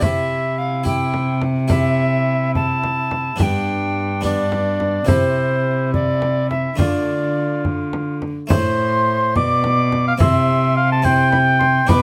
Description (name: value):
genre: classical, renaissance-style consort dance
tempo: 71 BPM (dotted quarters)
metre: 6/8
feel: straight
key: unclear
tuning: A4 = 441 Hz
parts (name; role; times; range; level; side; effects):
- alto recorder; melody; 0.0-12.0 s; C5 to D6; -25 LUFS; equal; none
- mellow cor anglais; second line; 0.0-12.0 s; D4 to A5; -24 LUFS; equal; none
- harpsichord; accompaniment; 0.0-12.0 s; G2 to C5; -31 LUFS; equal; none
- rich cello; bass; 0.0-12.0 s; G2 to D3; -23 LUFS; equal; none
- frame drum; percussion; 0.0-12.0 s; none; -23 LUFS; equal; none
room: light reverb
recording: close, detailed microphones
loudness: -18 LUFS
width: mono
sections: 0.0-8.5 A section; 8.5-12.0 A section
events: none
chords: 0.0 C; 3.4 G; 5.1 C; 6.8 Dm; 8.5 Am; 10.2 C